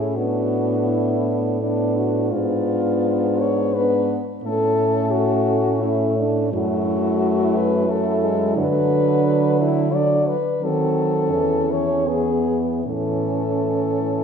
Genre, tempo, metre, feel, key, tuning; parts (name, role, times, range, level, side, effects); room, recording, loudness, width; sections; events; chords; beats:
classical, lyrical piece for horn quartet; 71-90 BPM; 3/4; rubato; A major; A4 = 440 Hz
warm French horn; melody; 0.0-14.2 s; D4 to D5; -23 LUFS; left 4 dB
mellow French horn; second line; 0.0-14.2 s; B3 to E4; -24 LUFS; right 7 dB
mellow French horn; accompaniment; 0.0-14.2 s; E3 to C#4; -24 LUFS; left 3 dB
mellow French horn; bass; 0.0-14.2 s; E2 to D#3; -24 LUFS; right 1 dB
wet concert hall reverb, RT60 2.2 s; heard from further back in the room; -18 LUFS; side -7 dB against mid
0.0-14.2 A section
0.2 Bm7/A; 2.3 G#dim7; 4.4 A; 6.5 F#m7; 8.6 Bm/D; 10.6 D#dim7; 11.3 A/E; 12.9 A
| 0.17 0.89 1.61 | 2.32 3.04 3.75 | 4.44 5.14 5.84 | 6.54 7.22 7.89 | 8.57 9.25 9.93 | 10.62 11.33 12.09 | 12.87 13.71